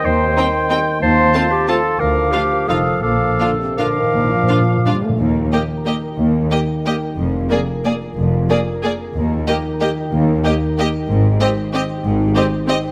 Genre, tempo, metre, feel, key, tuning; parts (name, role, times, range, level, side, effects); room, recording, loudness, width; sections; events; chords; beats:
classical, orchestral ballroom waltz; 155-204 BPM; 3/4; rubato; Bb major, Eb major from 5.2 s; A4 = 440 Hz
clear clarinet; second line; 0.0-4.9 s; G4 to C5; -22 LUFS; equal
clear oboe; second line; 0.0-5.0 s; F5 to A5; -26 LUFS; equal
mellow silver concert flute; second line; 0.0-5.0 s; C6 to Eb6; -25 LUFS; equal
mellow bassoon; accompaniment; 0.0-5.0 s; Eb3 to F3; -26 LUFS; equal
concert harp; arpeggios; 0.0-12.9 s; Ab2 to C6; -27 LUFS; equal
warm symphonic cello section; bass; 0.1-12.3 s; D2 to Bb2; -25 LUFS; equal
warm symphonic double bass section; bass; 0.1-12.3 s; F1 to Eb2; -24 LUFS; equal
bright symphonic violin section; melody; 0.4-12.8 s; D5 to A5; -28 LUFS; equal
warm symphonic violin section; second line; 0.4-12.8 s; Eb4 to Ab4; -28 LUFS; equal
warm symphonic viola section; accompaniment; 0.4-12.8 s; Bb3 to Eb4; -25 LUFS; equal
mellow French horn section; sustained chords; 0.4-5.2 s; C3 to F4; -26 LUFS; equal
timpani; percussion; 3.0-5.2 s; Bb2; -25 LUFS; equal
light reverb; close, detailed microphones; -17 LUFS; mono
0.0-5.2 A section; 5.2-12.9 B section
timpani fill 3.0-5.2
0.0 Cm/Eb; 1.0 F7/Eb; 2.0 Bb/D; 2.7 F7; 3.0 Bb; 5.2 Eb; 7.2 Bb7/F; 9.2 Eb; 11.1 Abmaj7
| 0.05 0.37 0.70 | 1.02 1.34 1.68 | 2.00 2.32 2.68 | 3.03 3.40 3.78 | 4.13 4.49 4.85 | 5.20 5.52 5.86 | 6.18 6.51 6.85 | 7.17 7.50 7.85 | 8.18 8.50 8.84 | 9.15 9.48 9.81 | 10.12 10.44 10.78 | 11.09 11.40 11.73 | 12.04 12.35 12.68